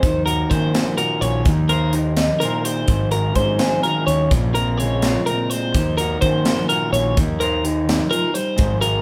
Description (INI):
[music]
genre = math rock and midwest emo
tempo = 84 BPM (dotted quarters)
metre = 6/8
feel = straight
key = unclear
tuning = A4 = 440 Hz
[part]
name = electric guitar at the edge of break-up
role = accompaniment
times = 0.0-9.0 s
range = Ab2 to Eb5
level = -25 LUFS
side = equal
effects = none
[part]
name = twelve-string electric guitar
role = arpeggios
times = 0.0-9.0 s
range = Bb4 to Db5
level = -24 LUFS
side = equal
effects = none
[part]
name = fuzz fingered electric bass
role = bass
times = 0.0-9.0 s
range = Ab1 to Eb3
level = -24 LUFS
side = equal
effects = overdrive
[part]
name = crisp fusion drum kit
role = drums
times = 0.0-8.9 s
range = hi-hat, kick drum, snare drum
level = -24 LUFS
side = equal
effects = none
[sound]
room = light reverb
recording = band playing live in one room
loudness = -19 LUFS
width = mono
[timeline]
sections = 0.0-9.0 A section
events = none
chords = 0.0 Ebm7; 1.5 Eb6; 2.9 Ab7sus4; 4.3 Bbm9; 5.7 Ebm7; 7.2 Eb69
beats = | 0.03 0.74 | 1.46 2.17 | 2.89 3.60 | 4.32 5.03 | 5.74 6.46 | 7.17 7.88 | 8.59